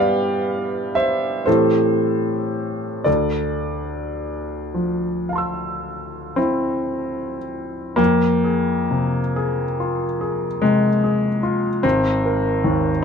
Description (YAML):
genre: classical, impressionist solo piano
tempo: 35-51 BPM (dotted quarters)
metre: 9/8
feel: rubato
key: D minor, F minor from 8.0 s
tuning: A4 = 445 Hz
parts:
  - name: clear baby grand piano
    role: solo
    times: 0.0-13.0 s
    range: Ab1 to E6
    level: -18 LUFS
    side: equal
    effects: none
room: light reverb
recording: dark, warm production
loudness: -18 LUFS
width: side -6 dB against mid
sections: 0.0-8.0 A section; 8.0-13.0 B section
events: none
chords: 0.0 G7; 1.5 Am7; 3.1 Dm9; 8.0 Fm; 11.8 Abadd9